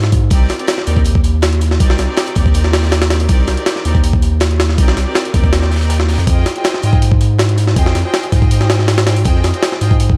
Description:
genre	drum and bass, jungle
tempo	161 BPM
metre	4/4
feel	straight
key	C minor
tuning	A4 = 440 Hz
part	saturated sub bass	bass	0.0-10.2 s	C2 to Ab2	-16 LUFS	equal	none
part	crunchy breakbeat drum kit	drums	0.0-10.1 s	hi-hat, snare drum	-34 LUFS	equal	none
part	jungle sampler-style drum kit	drums	0.0-10.2 s	hi-hat, kick drum, snare drum	-16 LUFS	equal	none
part	clear studio string section	sustained chords	0.3-9.9 s	C4 to G5	-26 LUFS	equal	none
room	little or no reverb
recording	vinyl crackle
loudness	-14 LUFS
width	mono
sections	0.0-10.2 A section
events	none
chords	0.3 Cm7; 6.3 Fm7

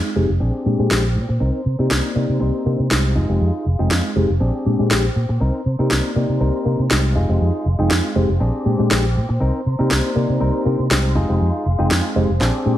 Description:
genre	filtered disco house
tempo	120 BPM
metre	4/4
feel	swing 54% on 16ths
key	C minor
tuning	A4 = 441 Hz
part	reed electric piano	accompaniment	0.0-12.8 s	Ab3 to G5	-22 LUFS	left 1 dB	overdrive, phaser, low-pass filter
part	rich studio violin section	sustained chords	0.0-12.8 s	Ab3 to Eb6	-32 LUFS	equal	low-pass filter
part	clean electric guitar	riff	0.0-12.8 s	C4 to C5	-26 LUFS	equal	low-pass filter
part	fingered electric bass	bass	0.2-12.7 s	F1 to C3	-18 LUFS	equal	low-pass filter
part	electronic snare drum	drums	0.9-12.5 s	none	-22 LUFS	equal	overdrive, small room ambience
room	light reverb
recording	none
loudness	-16 LUFS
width	side -13 dB against mid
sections	0.0-12.8 A section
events	filter sweep 0.0-12.8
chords	0.4 Bb13; 1.4 Cm7; 3.2 Fm7; 4.4 Bb13; 5.4 Cm7; 7.2 Fm7; 8.4 Bb13; 9.4 Cm7; 11.2 Fm7

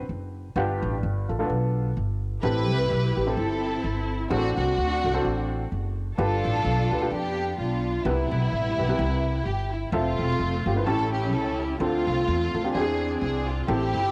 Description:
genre	uptempo gospel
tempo	128 BPM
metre	4/4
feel	swing 56% on 8ths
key	unclear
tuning	A4 = 440 Hz
part	warm upright piano	accompaniment	0.0-14.1 s	G2 to E5	-32 LUFS	equal	cassette tape
part	upright bass	bass	0.1-14.1 s	E1 to F2	-30 LUFS	equal	transformer saturation
part	warm studio string section	melody	2.4-14.1 s	G3 to B4	-29 LUFS	equal	cassette tape
room	light reverb, studio reverb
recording	home recording on cassette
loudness	-26 LUFS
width	mono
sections	0.0-14.1 A section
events	none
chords	0.0 N.C.; 0.6 G7; 2.4 Am7; 4.3 D7/A; 6.2 G7; 8.1 Cmaj7; 9.9 Fmaj7; 10.9 A7; 11.8 Dm7; 12.7 Eaug7

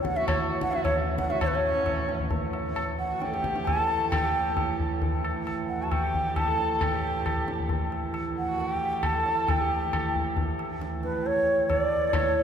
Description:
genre	indian classical, Hindustani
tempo	134 BPM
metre	3/4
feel	straight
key	A raga khamaj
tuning	A4 = 445 Hz
part	hollow bansuri	melody	0.0-12.4 s	B4 to A5	-27 LUFS	equal	none
part	hand-pumped harmonium	drone	0.0-12.4 s	A2 to E3	-34 LUFS	right 4 dB	none
part	tabla	percussion	0.0-12.3 s	none	-29 LUFS	left 1 dB	none
part	rich sarangi	second line	0.2-10.3 s	C#4 to A4	-36 LUFS	right 2 dB	none
room	wet cathedral reverb, RT60 7.0 s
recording	recorded in a church or concert hall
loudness	-24 LUFS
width	side -8 dB against mid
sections	0.0-1.4 A section; 1.4-12.1 B section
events	speeding up 0.0-12.4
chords	none

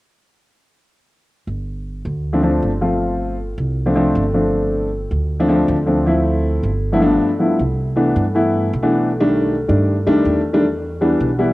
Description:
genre	Afro-Cuban jazz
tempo	157 BPM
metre	4/4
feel	straight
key	unclear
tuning	A4 = 441 Hz
part	upright bass	bass	1.5-11.5 s	G1 to G2	-21 LUFS	right 1 dB	none
part	dark baby grand piano	accompaniment	2.3-11.5 s	G2 to F4	-16 LUFS	left 1 dB	none
room	moderate spring reverb, RT60 2.5 s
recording	home recording on cassette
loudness	-15 LUFS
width	side -18 dB against mid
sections	1.5-7.6 A section; 7.6-11.5 B section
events	none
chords	1.5 G7sus4; 6.1 Dm7; 6.8 G13; 7.6 Cmaj13; 9.1 B7alt; 10.6 Em7

